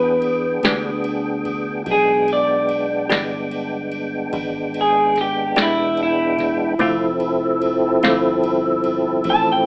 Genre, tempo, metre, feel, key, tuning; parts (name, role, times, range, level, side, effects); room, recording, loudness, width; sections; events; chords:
slow blues; 49 BPM (dotted quarters); 12/8; straight; A4 = 440 Hz
electric guitar through a small old amp; melody; 0.0-9.7 s; E4 to A5; -18 LUFS; equal
tonewheel organ; sustained chords; 0.0-9.7 s; F3 to G5; -20 LUFS; equal; overdrive, chorus vibrato, slow rotary speaker
fingered electric bass; bass; 0.0-9.7 s; E1 to E2; -30 LUFS; equal
booming analog drum machine; drums; 0.2-9.4 s; kick drum, ride cymbal, snare drum; -26 LUFS; equal
clean electric guitar; accompaniment; 0.6-8.3 s; D3 to G4; -20 LUFS; equal; tremolo
light reverb, digital ambience; rough home demo mix, AM radio sound; -16 LUFS; side -28 dB against mid
0.0-9.7 A section
clean electric guitar solo 0.0-9.7
0.0 E7#9; 6.8 Dm7